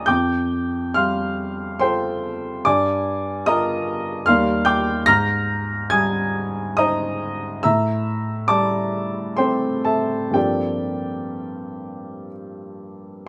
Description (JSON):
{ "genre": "classical, impressionist solo piano", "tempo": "60-76 BPM", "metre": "3/4", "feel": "rubato", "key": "unclear", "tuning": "A4 = 438 Hz", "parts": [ { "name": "warm baby grand piano", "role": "solo", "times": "0.0-13.3 s", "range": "Eb2 to Bb6", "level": "-22 LUFS", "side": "equal", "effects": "none" } ], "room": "moderate studio ambience, RT60 0.5 s", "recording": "none", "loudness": "-21 LUFS", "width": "mono", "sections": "0.0-13.3 A section", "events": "none", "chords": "0.1 Fadd9; 2.6 Gm7; 4.3 Ebmaj7; 5.1 Abmaj7; 7.6 Am7; 10.3 Gm11" }